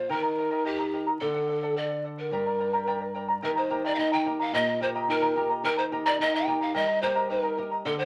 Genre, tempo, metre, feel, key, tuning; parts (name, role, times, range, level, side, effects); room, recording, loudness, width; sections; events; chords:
andean folk, Andean ensemble; 108 BPM; 2/4; straight; A4 = 444 Hz
breathy mellow pan flute; melody; 0.0-8.1 s; G4 to G5; -30 LUFS; equal
charango; accompaniment; 0.0-8.1 s; G4 to Bb5; -32 LUFS; equal
nylon-string guitar; accompaniment; 0.0-8.1 s; G2 to G4; -35 LUFS; equal
wet club reverb, RT60 0.7 s; vinyl crackle; -27 LUFS; mono
0.0-3.4 A section; 3.4-8.1 B section
0.1 Eb; 1.2 D; 2.3 Gm; 3.4 Eb